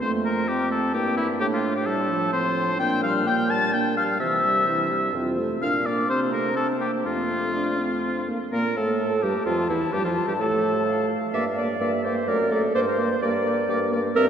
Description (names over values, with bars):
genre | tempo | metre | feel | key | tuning
quick classical-period movement for wind quintet | 128 BPM | 3/4 | straight | F major | A4 = 436 Hz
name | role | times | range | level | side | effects
concert flute | melody | 0.0-14.3 s | Bb4 to A6 | -31 LUFS | left 5 dB | none
clear oboe | second line | 0.0-14.3 s | E4 to A5 | -26 LUFS | left 2 dB | none
warm French horn | accompaniment | 0.0-14.3 s | E3 to D4 | -28 LUFS | right 1 dB | none
warm clarinet | accompaniment | 0.0-14.3 s | A3 to E5 | -27 LUFS | right 3 dB | none
mellow bassoon | bass | 0.0-14.3 s | E2 to C3 | -28 LUFS | right 1 dB | none
room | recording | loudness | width
wet cathedral reverb, RT60 4.3 s | dark, warm production | -21 LUFS | side -8 dB against mid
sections
0.0-8.5 A section; 8.5-14.3 B section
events
none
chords
0.0 F; 0.9 Gm6; 1.4 F/A; 2.8 Gm/Bb; 4.2 C; 5.1 F; 5.6 Bb; 6.1 Bbmaj9/C; 6.6 C5; 7.0 F; 8.5 Gmadd9; 9.5 A5; 9.9 Fadd9; 11.3 Gm; 12.3 D/F#; 12.8 Gm